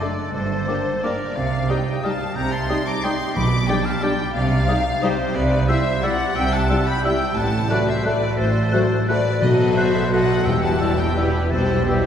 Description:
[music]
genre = classical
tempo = 156-194 BPM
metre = 3/4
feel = rubato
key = E minor from 5.4 s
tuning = A4 = 439 Hz
[part]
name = rich symphonic violin section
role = melody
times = 0.0-12.1 s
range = G4 to A4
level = -32 LUFS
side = left 4 dB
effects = none
[part]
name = hollow concert flute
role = second line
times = 0.0-12.0 s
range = D6 to F#6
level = -32 LUFS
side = left 2 dB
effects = none
[part]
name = rich symphonic violin section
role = second line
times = 0.0-12.1 s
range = B4 to D6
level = -25 LUFS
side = left 3 dB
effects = none
[part]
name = warm oboe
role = second line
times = 0.0-12.1 s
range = G4 to B5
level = -28 LUFS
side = equal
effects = none
[part]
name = mellow bassoon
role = accompaniment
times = 0.0-12.0 s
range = G3 to Bb3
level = -30 LUFS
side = equal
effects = none
[part]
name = rich symphonic viola section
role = accompaniment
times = 0.0-12.1 s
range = F#3 to F#4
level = -26 LUFS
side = equal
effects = none
[part]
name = warm French horn section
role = sustained chords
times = 0.0-12.0 s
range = G3 to F#4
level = -30 LUFS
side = left 2 dB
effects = none
[part]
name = rich symphonic cello section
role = bass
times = 0.3-12.1 s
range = E2 to C3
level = -25 LUFS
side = right 1 dB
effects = none
[part]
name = warm symphonic double bass section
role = bass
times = 0.3-12.1 s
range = E1 to C2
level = -25 LUFS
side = right 2 dB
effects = none
[part]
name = timpani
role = percussion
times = 3.4-3.8, 9.4-12.0 s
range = E2 to B2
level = -26 LUFS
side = equal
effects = none
[sound]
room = wet cathedral reverb, RT60 4.9 s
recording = heard from further back in the room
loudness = -18 LUFS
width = side -8 dB against mid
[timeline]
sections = 0.0-12.1 A section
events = none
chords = 0.3 Gm; 1.4 Cm; 3.4 G/B; 4.4 Cm; 5.4 C; 7.4 F#dim/A; 9.4 B7; 10.5 Em; 11.5 Em/B

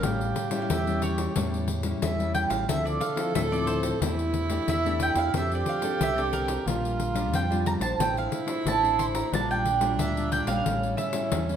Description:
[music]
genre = samba and choro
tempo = 90 BPM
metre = 4/4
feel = straight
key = unclear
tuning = A4 = 440 Hz
[part]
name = mandolin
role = melody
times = 0.0-11.6 s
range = Bb4 to C6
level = -29 LUFS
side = right 4 dB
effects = none
[part]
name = breathy tenor saxophone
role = second line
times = 0.0-11.6 s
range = C#4 to A4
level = -31 LUFS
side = right 2 dB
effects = none
[part]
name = nylon-string guitar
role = accompaniment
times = 0.0-11.6 s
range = A2 to C5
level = -31 LUFS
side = left 3 dB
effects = none
[part]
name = fingered electric bass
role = bass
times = 0.0-11.6 s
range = A1 to F2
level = -31 LUFS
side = equal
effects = none
[part]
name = pandeiro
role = percussion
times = 0.0-11.6 s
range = none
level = -32 LUFS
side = left 5 dB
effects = none
[sound]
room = wet large studio reverb, RT60 1.4 s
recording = none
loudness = -24 LUFS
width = side -8 dB against mid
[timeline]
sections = 0.0-11.6 A section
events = none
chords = 0.0 A7; 2.7 Dm9; 4.0 A7sus4/E; 5.3 F6; 6.7 Bb6; 8.0 Dm7/A; 9.3 Gm7/Bb; 10.7 A7

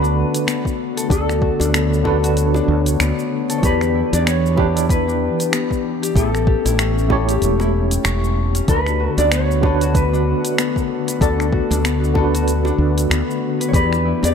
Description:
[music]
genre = sunset chillout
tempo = 95 BPM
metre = 4/4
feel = swing 58% on 16ths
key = D major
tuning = A4 = 441 Hz
[part]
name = mellow electric guitar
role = melody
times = 0.0-14.3 s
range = A4 to D5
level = -23 LUFS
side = left 1 dB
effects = lush chorus, ping-pong delay
[part]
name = tine electric piano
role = accompaniment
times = 0.0-14.3 s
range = D3 to E5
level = -23 LUFS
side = moving between left 8 dB and right 7 dB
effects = overdrive, fast stereo tremolo, auto-pan, tape echo
[part]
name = airy breathy pad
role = sustained chords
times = 0.0-14.3 s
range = D3 to C#5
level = -26 LUFS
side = right 1 dB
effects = chorus
[part]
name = Celtic harp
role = arpeggios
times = 0.0-14.3 s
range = B3 to C#5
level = -24 LUFS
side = left 9 dB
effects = tape echo
[part]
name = mellow fretless electric bass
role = bass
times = 0.0-14.3 s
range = E1 to E2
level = -19 LUFS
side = equal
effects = none
[part]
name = deep house drum kit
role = drums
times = 0.0-14.3 s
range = finger snaps, hi-hat, shaker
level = -25 LUFS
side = equal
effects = small room reverb
[part]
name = electronic kick drum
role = drums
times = 0.7-13.9 s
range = none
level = -19 LUFS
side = equal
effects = overdrive, small room reverb
[part]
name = bongos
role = percussion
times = 1.6-14.3 s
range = none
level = -30 LUFS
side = equal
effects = none
[sound]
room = light reverb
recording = none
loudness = -15 LUFS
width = side -7 dB against mid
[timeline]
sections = 0.0-14.3 A section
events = none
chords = 0.0 D6; 3.6 Em7; 6.2 A7; 8.7 D6; 13.7 Em7

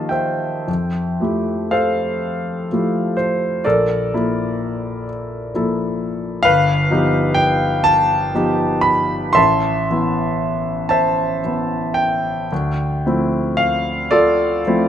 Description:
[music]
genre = classical, impressionist solo piano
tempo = 35-45 BPM (dotted quarters)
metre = 6/8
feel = rubato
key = unclear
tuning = A4 = 440 Hz
[part]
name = clear grand piano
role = solo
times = 0.0-14.9 s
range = G1 to C6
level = -16 LUFS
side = equal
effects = none
[sound]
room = light reverb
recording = close, detailed microphones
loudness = -16 LUFS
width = side -9 dB against mid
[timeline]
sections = 0.0-14.9 A section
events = none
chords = 0.0 Eb9; 0.7 Fmaj9; 3.6 Bbmaj7#11; 6.4 Gaug7; 9.4 Amadd9; 12.5 Dm9

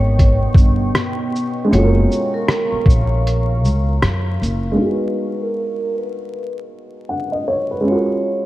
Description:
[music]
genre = lo-fi hip hop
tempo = 78 BPM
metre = 4/4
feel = swing 59% on 16ths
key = unclear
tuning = A4 = 436 Hz
[part]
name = vibraphone with medium hard mallets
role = melody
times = 0.0-8.4 s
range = A#4 to C#5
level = -24 LUFS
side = equal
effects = low-pass filter, tape echo
[part]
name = dark upright piano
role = accompaniment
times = 0.0-8.5 s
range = G#3 to F#5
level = -21 LUFS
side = right 1 dB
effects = cassette tape, low-pass filter
[part]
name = deep dark ambient pad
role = sustained chords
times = 0.0-4.8 s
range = B3 to C#6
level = -26 LUFS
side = left 1 dB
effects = chorus, built-in reverb
[part]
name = upright bass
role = bass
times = 0.0-4.7 s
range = F#1 to F#2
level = -17 LUFS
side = equal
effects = none
[part]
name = trip hop sampler-style drum kit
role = drums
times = 0.2-4.6 s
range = hi-hat, kick drum, rim click, shaker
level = -15 LUFS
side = equal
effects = vintage 12-bit sampler grit
[sound]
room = light reverb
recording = dark, warm production, vinyl crackle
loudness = -15 LUFS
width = side -16 dB against mid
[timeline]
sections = 0.0-4.8 A section; 4.8-8.5 B section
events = filter sweep 4.8-8.5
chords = 0.0 D#7b13; 1.7 F#maj7; 4.8 G#m7; 7.9 F#maj9

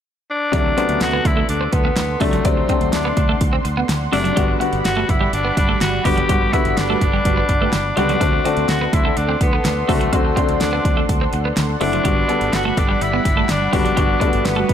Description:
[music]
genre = 1980s-style pop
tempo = 125 BPM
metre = 4/4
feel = straight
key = unclear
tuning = A4 = 440 Hz
[part]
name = raspy tenor saxophone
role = melody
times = 0.3-14.7 s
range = A3 to G4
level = -22 LUFS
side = left 1 dB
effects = ping-pong delay
[part]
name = clear baby grand piano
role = accompaniment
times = 0.5-14.7 s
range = C3 to A4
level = -23 LUFS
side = left 5 dB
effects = none
[part]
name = lush unison pad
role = sustained chords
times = 0.5-14.7 s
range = G3 to C6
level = -27 LUFS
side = right 1 dB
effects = chorus
[part]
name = twelve-string electric guitar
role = riff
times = 0.5-14.7 s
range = F#3 to D4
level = -26 LUFS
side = right 4 dB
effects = lush chorus, ping-pong delay
[part]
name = fingered electric bass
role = bass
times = 0.5-14.7 s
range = F#1 to D2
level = -24 LUFS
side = right 1 dB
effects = none
[part]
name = pop drum kit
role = drums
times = 0.5-14.7 s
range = hi-hat, kick drum, snare drum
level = -20 LUFS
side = right 1 dB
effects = none
[part]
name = mellow synth brass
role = stabs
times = 6.9-8.2, 14.6-14.7 s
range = G3 to B4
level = -26 LUFS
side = right 4 dB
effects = chorus
[sound]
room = light reverb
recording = none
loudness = -15 LUFS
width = side -9 dB against mid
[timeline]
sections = 0.5-14.7 A section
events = band accent 6.3-8.2, 14.0-14.7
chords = 0.0 N.C.; 0.5 D7; 4.4 Gmaj7; 8.2 D7; 12.1 Gmaj7

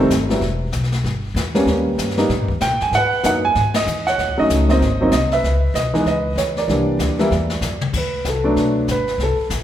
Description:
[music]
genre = jazz piano trio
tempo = 192 BPM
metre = 4/4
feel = swing 61% on 8ths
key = unclear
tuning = A4 = 441 Hz
[part]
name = warm baby grand piano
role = melody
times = 0.0-9.3 s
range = E3 to G#5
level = -18 LUFS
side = right 1 dB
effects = none
[part]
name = upright bass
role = bass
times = 0.0-9.6 s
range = E1 to B2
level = -22 LUFS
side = left 1 dB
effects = none
[part]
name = jazz brush drum kit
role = drums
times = 0.1-9.6 s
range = brushed snare drum, crash cymbal, hi-hat, kick drum, ride cymbal, snare drum, toms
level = -26 LUFS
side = left 3 dB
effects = none
[sound]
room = wet recital hall reverb, RT60 1.3 s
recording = recorded in a church or concert hall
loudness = -16 LUFS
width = side -11 dB against mid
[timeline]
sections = 0.0-7.9 A section; 7.9-9.6 B section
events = band accent 3.7; drum fill 7.3-7.9; grand piano solo 7.9-9.6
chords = 0.4 Em; 1.7 D#7b13; 2.9 G#m7; 4.2 D#m7b5; 4.8 G#; 5.4 C#m7; 6.7 C9; 7.9 Gmaj7

